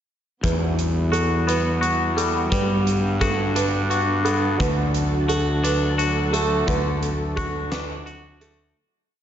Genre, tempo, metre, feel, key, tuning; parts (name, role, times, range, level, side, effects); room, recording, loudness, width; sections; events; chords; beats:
post-rock; 58 BPM (dotted quarters); 6/8; straight; A4 = 439 Hz
dark symphonic string section; sustained chords; 0.4-8.7 s; D3 to A4; -28 LUFS; right 2 dB
felt-muted upright piano; arpeggios; 0.4-8.8 s; A4 to B4; -29 LUFS; right 5 dB; slapback echo
twangy electric guitar; arpeggios; 0.4-8.8 s; E2 to F#4; -25 LUFS; left 3 dB; phaser, slapback echo
fuzz fingered electric bass; bass; 0.4-8.7 s; D2 to G2; -23 LUFS; equal; overdrive
huge arena drum kit; drums; 0.4-8.6 s; hi-hat, kick drum, snare drum; -29 LUFS; equal
light reverb, small room ambience; nothing above 7.5 kHz; -19 LUFS; side -10 dB against mid
0.4-8.8 A section
fade-out 6.7-8.8
0.4 Emadd9; 2.5 Gmaj7; 4.6 D
| 0.43 1.48 | 2.52 3.56 | 4.60 5.64 | 6.68 7.72